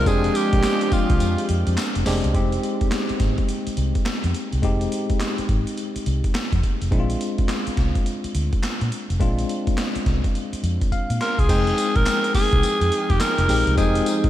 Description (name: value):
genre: R&B, new jack swing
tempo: 105 BPM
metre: 4/4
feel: swing 63% on 16ths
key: F dorian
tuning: A4 = 440 Hz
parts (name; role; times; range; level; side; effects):
- breathy alto saxophone; melody; 0.0-1.5, 11.2-14.3 s; F4 to Bb4; -23 LUFS; equal; analog delay
- bell-like tine electric piano; accompaniment; 0.0-14.3 s; Ab3 to C6; -25 LUFS; left 2 dB; medium stereo tremolo
- brassy analog pad; sustained chords; 0.0-2.3, 11.5-14.3 s; F3 to G5; -29 LUFS; right 1 dB; chorus
- vintage muted fingered electric bass; bass; 0.0-14.3 s; F1 to Bb2; -23 LUFS; equal; none
- boom bap sampler-style drum kit; drums; 0.1-14.3 s; crash cymbal, handclaps, hi-hat, kick drum, snare drum, tambourine; -24 LUFS; equal; none
room: light reverb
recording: none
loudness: -19 LUFS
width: side -13 dB against mid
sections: 0.0-2.3 A section; 2.3-11.5 B section; 11.5-14.3 A section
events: break 1.2-2.3; tine electric piano fill 10.6-11.5; drum fill 10.9-11.5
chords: 0.1 Fm69; 2.3 Fm9; 6.9 Bb9; 11.5 Fm9